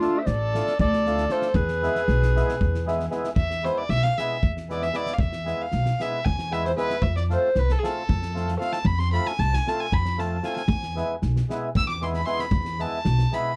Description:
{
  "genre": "balkan folk, Balkan wedding band",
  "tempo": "230 BPM (eighths)",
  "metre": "7/8",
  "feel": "straight",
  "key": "E phrygian dominant",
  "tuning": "A4 = 440 Hz",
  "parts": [
    { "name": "warm clarinet", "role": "melody", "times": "0.0-3.1 s", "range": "F4 to E5", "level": "-27 LUFS", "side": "equal", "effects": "none" },
    { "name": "dark violin", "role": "second line", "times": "0.0-13.6 s", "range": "D4 to E6", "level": "-31 LUFS", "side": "equal", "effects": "none" },
    { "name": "mellow accordion", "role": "accompaniment", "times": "0.0-13.5 s", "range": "G#3 to A4", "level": "-31 LUFS", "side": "equal", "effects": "none" },
    { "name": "upright bass", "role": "bass", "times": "0.0-13.2 s", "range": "A1 to F2", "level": "-27 LUFS", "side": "equal", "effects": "none" },
    { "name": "loose indie drum kit", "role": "percussion", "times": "0.0-13.4 s", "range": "kick drum, snare drum", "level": "-33 LUFS", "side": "equal", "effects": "none" }
  ],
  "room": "little or no reverb",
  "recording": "none",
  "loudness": "-24 LUFS",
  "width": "mono",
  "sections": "0.0-3.4 A section; 3.4-13.6 B section",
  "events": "violin solo 3.4-13.6",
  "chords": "0.0 Dm; 1.5 E; 7.0 F; 10.7 E"
}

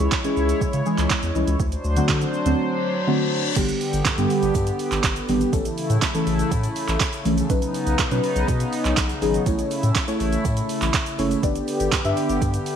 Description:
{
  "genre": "dance-pop",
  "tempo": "122 BPM",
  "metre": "4/4",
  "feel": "straight",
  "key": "unclear",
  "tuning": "A4 = 440 Hz",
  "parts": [
    { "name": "deep mellow chord stab", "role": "accompaniment", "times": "0.0-12.8 s", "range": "D3 to E5", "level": "-24 LUFS", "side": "equal", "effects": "chorus, sidechain pumping" },
    { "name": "chorused pulse-width pad", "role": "sustained chords", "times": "0.0-12.8 s", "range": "C#3 to C#5", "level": "-26 LUFS", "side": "equal", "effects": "sidechain pumping" },
    { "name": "saturated sub bass", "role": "bass", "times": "0.0-12.6 s", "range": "F#1 to D3", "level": "-24 LUFS", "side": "equal", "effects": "sidechain pumping" },
    { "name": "smooth R&B drum kit", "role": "drums", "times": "0.0-12.8 s", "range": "crash cymbal, handclaps, hi-hat, kick drum, shaker, snare drum", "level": "-24 LUFS", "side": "right 3 dB", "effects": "overdrive" },
    { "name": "reverse cymbal", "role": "sound effects", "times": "2.8-3.6 s", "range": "none", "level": "-29 LUFS", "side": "left 6 dB", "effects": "none" },
    { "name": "egg shaker", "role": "percussion", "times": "3.6-12.7 s", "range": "none", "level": "-43 LUFS", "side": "left 15 dB", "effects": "none" }
  ],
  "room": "moderate echo chamber reverb, RT60 1.4 s",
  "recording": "1960s-style stereo",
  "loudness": "-19 LUFS",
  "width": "side -8 dB against mid",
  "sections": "0.0-3.6 A section; 3.6-12.8 B section",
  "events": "silent gap 2.6-3.6; reverse cymbal 2.8-3.6",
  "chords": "0.0 C#m; 1.6 D7; 3.6 G; 5.5 A; 7.5 Badd9; 9.5 A; 11.4 G"
}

